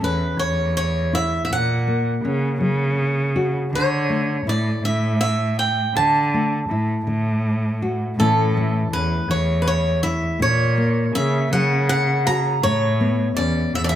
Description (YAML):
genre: acoustic folk-pop ballad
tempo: 54 BPM (dotted quarters)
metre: 6/8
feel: straight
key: D major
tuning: A4 = 440 Hz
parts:
  - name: picked swing-style acoustic guitar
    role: melody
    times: 0.0-14.0 s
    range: A4 to A#5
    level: -22 LUFS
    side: equal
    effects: none
  - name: nylon-string guitar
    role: accompaniment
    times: 0.0-14.0 s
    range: D2 to F#4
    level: -26 LUFS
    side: left 2 dB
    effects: none
  - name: rich cello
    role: bass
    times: 0.0-14.0 s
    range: E2 to D3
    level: -21 LUFS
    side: right 1 dB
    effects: none
room: light reverb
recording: none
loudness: -18 LUFS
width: side -11 dB against mid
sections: 0.0-14.0 A section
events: none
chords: 0.0 A; 1.5 F#/A#; 3.7 Dadd9; 8.2 A; 10.4 F#/A#; 12.6 Aadd9